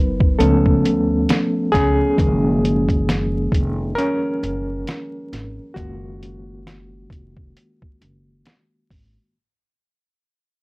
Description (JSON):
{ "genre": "lo-fi hip hop", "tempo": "67 BPM", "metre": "4/4", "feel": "swing 61% on 16ths", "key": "F# major", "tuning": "A4 = 445 Hz", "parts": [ { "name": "barky reed electric piano", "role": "accompaniment", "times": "0.0-9.4 s", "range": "D#3 to B4", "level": "-19 LUFS", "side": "equal", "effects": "overdrive, fast tremolo" }, { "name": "upright bass", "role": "bass", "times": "0.0-9.1 s", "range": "E#1 to D2", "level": "-22 LUFS", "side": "equal", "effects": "transformer saturation" }, { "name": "lo-fi sampler-style drum kit", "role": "drums", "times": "0.2-9.2 s", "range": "hi-hat, kick drum, snare drum", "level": "-19 LUFS", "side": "equal", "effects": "none" } ], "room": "light reverb", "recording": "dry, gritty hardware recording, vinyl crackle", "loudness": "-16 LUFS", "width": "side -26 dB against mid", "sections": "0.0-9.3 A section", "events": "fade-out 0.0-9.3; reed electric piano solo 0.0-9.3", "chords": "0.4 C#aug7; 2.2 F#maj13" }